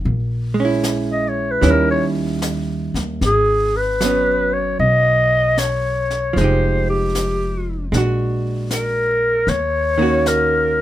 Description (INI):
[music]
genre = jazz ballad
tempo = 77 BPM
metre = 4/4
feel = swing 66% on 8ths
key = G# minor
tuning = A4 = 441 Hz
[part]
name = hollow-body jazz guitar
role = accompaniment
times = 0.0-10.8 s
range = D#3 to G4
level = -21 LUFS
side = right 4 dB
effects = none
[part]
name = upright bass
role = bass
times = 0.1-10.8 s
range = F1 to D#2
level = -22 LUFS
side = left 1 dB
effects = none
[part]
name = jazz brush drum kit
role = drums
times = 0.1-10.8 s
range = brushed snare drum, hi-hat, snare drum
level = -29 LUFS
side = left 2 dB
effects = none
[part]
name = growling clarinet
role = melody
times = 1.1-10.8 s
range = G4 to D#5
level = -17 LUFS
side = left 1 dB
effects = none
[sound]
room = light reverb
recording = minimal, uncompressed stereo recording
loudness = -16 LUFS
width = side -13 dB against mid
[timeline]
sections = 0.0-3.2 A section; 3.2-10.8 B section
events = clarinet solo 0.0-3.2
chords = 0.1 A#m7b5; 1.6 D#7b9; 3.2 G#m7; 6.4 Fm9; 7.9 A#aug7; 9.5 D#m7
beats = | 0.05 0.83 1.61 2.42 | 3.21 4.00 4.79 5.58 | 6.37 7.15 7.93 8.70 | 9.47 10.24